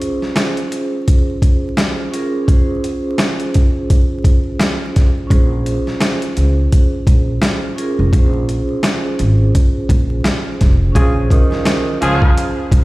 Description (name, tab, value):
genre	hip hop, boom-bap hip-hop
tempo	85 BPM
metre	4/4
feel	swing 58% on 16ths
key	Bb minor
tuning	A4 = 440 Hz
part	vibraphone with medium hard mallets	accompaniment	0.0-12.8 s	Db4 to C5	-21 LUFS	right 2 dB	high-pass filter, low-pass filter
part	boom bap sampler-style drum kit	drums	0.0-12.8 s	hi-hat, kick drum, snare drum	-14 LUFS	equal	none
part	upright bass	bass	5.3-12.8 s	F1 to Db2	-16 LUFS	equal	none
part	growling tenor saxophone	melody	11.0-12.5 s	Db3 to F3	-20 LUFS	right 1 dB	high-pass filter, low-pass filter, tape echo
part	bright trumpet section	stabs	11.0-12.3 s	Db4 to Ab4	-23 LUFS	left 1 dB	high-pass filter, low-pass filter, tape echo
room	studio reverb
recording	played on a big sound system in a bare room, stone room reverb, vinyl crackle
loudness	-13 LUFS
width	side -19 dB against mid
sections	0.0-11.0 A section; 11.0-12.8 B section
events	break 0.0-5.3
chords	0.0 Bbm7; 2.5 Dbmaj7; 5.3 Bbm7